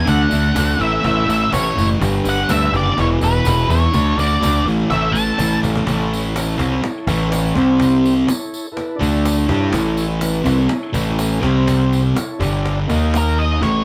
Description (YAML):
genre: garage rock duo or trio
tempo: 124 BPM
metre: 4/4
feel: straight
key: unclear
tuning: A4 = 438 Hz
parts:
  - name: octave-fuzz lead guitar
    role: melody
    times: 0.0-5.6, 13.2-13.8 s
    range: A#4 to A5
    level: -22 LUFS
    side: equal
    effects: distortion, analog delay
  - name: fuzz guitar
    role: riff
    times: 0.0-13.8 s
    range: E2 to G4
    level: -21 LUFS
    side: equal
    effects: distortion
  - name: combo organ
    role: sustained chords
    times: 0.1-13.5 s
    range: C4 to D#5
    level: -29 LUFS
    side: equal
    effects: none
  - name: growling picked electric bass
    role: bass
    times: 0.1-13.8 s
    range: E1 to G2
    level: -22 LUFS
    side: equal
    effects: overdrive
  - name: cajon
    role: drums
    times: 0.1-13.7 s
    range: none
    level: -29 LUFS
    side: equal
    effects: none
  - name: tambourine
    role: percussion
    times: 0.1-13.7 s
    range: none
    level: -36 LUFS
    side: equal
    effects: none
room: light reverb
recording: band playing live in one room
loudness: -17 LUFS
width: mono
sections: 0.0-5.9 A section; 5.9-13.6 B section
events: drum fill 5.4-5.9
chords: 0.1 D; 0.8 A; 2.0 G; 3.0 E; 3.9 D; 4.7 A; 7.6 C5; 8.3 A; 9.0 D5; 9.5 A; 11.4 C5; 12.2 A; 12.4 G5; 12.9 D#5